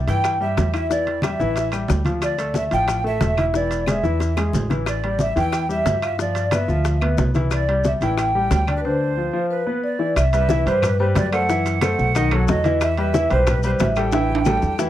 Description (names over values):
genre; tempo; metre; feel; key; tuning
Afro-Cuban jazz; 182 BPM; 4/4; straight; C major; A4 = 438 Hz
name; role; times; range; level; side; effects
upright bass; bass; 0.0-14.9 s; E1 to G2; -22 LUFS; right 1 dB; none
vibraphone with medium mallets; melody; 0.1-14.9 s; B4 to G5; -24 LUFS; equal; none
breathy bright jazz flute; second line; 0.1-14.8 s; B4 to G5; -29 LUFS; right 10 dB; none
clear concert grand piano; accompaniment; 0.1-14.9 s; D3 to F5; -24 LUFS; left 3 dB; none
maracas; percussion; 0.1-14.9 s; none; -39 LUFS; left 10 dB; none
timbales; percussion; 0.1-14.9 s; none; -29 LUFS; right 6 dB; none
bongos; percussion; 0.2-14.9 s; none; -28 LUFS; left 7 dB; none
claves; percussion; 0.2-14.6 s; none; -36 LUFS; left 13 dB; none
congas; percussion; 0.2-14.9 s; none; -27 LUFS; equal; none
room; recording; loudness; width
studio ambience; dry, close 1970s-style studio recording; -18 LUFS; side -12 dB against mid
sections
0.0-10.2 A section; 10.2-14.9 B section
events
drum fill 4.2-4.9, 14.1-14.9; break 8.8-10.2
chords
0.0 C (rootless); 0.9 Em7; 1.6 A5; 2.2 Dmadd9; 3.5 E7; 4.9 A5; 6.2 G7; 7.5 Cadd9; 8.2 A5; 8.8 Dm7; 9.5 Dm69; 10.2 Cmaj7; 11.5 F#m7b5; 12.2 B7; 12.8 Em; 14.1 A5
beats
0.24 0.57 | 0.90 1.23 1.56 1.89 | 2.22 2.56 2.88 3.21 | 3.55 3.88 4.21 4.54 | 4.87 5.20 5.53 5.86 | 6.19 6.52 6.85 7.18 | 7.52 7.85 8.18 8.51 | 8.84 9.17 9.51 9.84 | 10.17 10.50 10.83 11.16 | 11.49 11.82 12.15 12.48 | 12.81 13.14 13.47 13.80 | 14.13 14.46 14.79